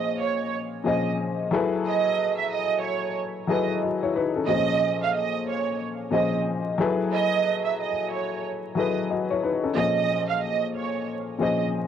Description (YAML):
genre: hip hop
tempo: 91 BPM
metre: 4/4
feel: swing 60% on 16ths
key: Bb minor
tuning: A4 = 441 Hz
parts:
  - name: warm studio violin section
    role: melody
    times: 0.0-11.6 s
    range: Db5 to F5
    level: -26 LUFS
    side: right 9 dB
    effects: cassette tape, tape echo
  - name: dark upright piano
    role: accompaniment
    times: 0.0-11.9 s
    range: Bb2 to Eb5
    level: -25 LUFS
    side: left 4 dB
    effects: cassette tape
room: moderate booth ambience, RT60 0.2 s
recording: home recording on cassette, vinyl crackle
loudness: -23 LUFS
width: side -8 dB against mid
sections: 0.0-11.9 A section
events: none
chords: 0.0 Bbm11; 1.5 Gbm11; 4.5 Bbm11; 6.8 Gbm11; 9.8 Bbm11